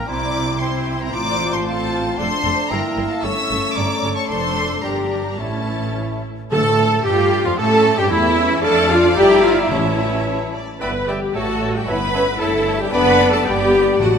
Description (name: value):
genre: quick classical-period movement for symphony orchestra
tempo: 113 BPM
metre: 2/4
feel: rubato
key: unclear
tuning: A4 = 440 Hz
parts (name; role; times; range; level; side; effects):
- rich chamber violin section; melody; 0.0-14.1 s; E4 to E6; -26 LUFS; left 3 dB; none
- bright clarinet; second line; 0.0-14.2 s; E4 to D5; -28 LUFS; left 1 dB; none
- mellow hollow silver concert flute; second line; 0.0-14.2 s; E4 to C#6; -29 LUFS; left 2 dB; none
- warm cor anglais; second line; 0.0-14.2 s; E4 to F5; -28 LUFS; right 3 dB; none
- warm studio violin section; second line; 0.0-14.2 s; A4 to B5; -28 LUFS; left 2 dB; none
- mellow French horn section; sustained chords; 0.0-14.2 s; E3 to F4; -24 LUFS; left 4 dB; none
- rich symphonic double bass section; bass; 0.0-14.2 s; F1 to A2; -25 LUFS; right 4 dB; none
- warm chamber cello section; bass; 0.0-14.2 s; F2 to F#4; -26 LUFS; right 2 dB; none
- warm symphonic viola section; accompaniment; 0.1-14.2 s; C4 to B4; -19 LUFS; equal; none
- timpani; percussion; 6.5-7.3, 9.7-10.5, 14.0-14.2 s; A2 to D3; -27 LUFS; left 1 dB; none
room: wet concert hall reverb, RT60 2.3 s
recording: none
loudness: -15 LUFS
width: side -7 dB against mid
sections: 0.0-6.5 A section; 6.5-14.2 B section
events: none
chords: 0.1 C; 1.1 F/A; 2.2 Dm; 2.7 Edim; 3.2 A7/G; 4.3 Dm/F; 4.8 Gm; 5.4 A; 6.5 Fadd9; 7.6 A7; 8.6 Dm/F; 9.2 Em7b5/G; 9.7 A; 10.8 Em7/G; 11.3 A; 11.9 A7/G; 12.9 D/F#; 13.5 G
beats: | 0.08 0.61 | 1.14 1.67 | 2.19 2.71 | 3.24 3.77 | 4.29 4.83 | 5.40 5.96 | 6.52 7.06 | 7.59 8.11 | 8.63 9.17 | 9.71 10.26 | 10.81 11.35 | 11.88 12.41 | 12.93 13.46 | 14.00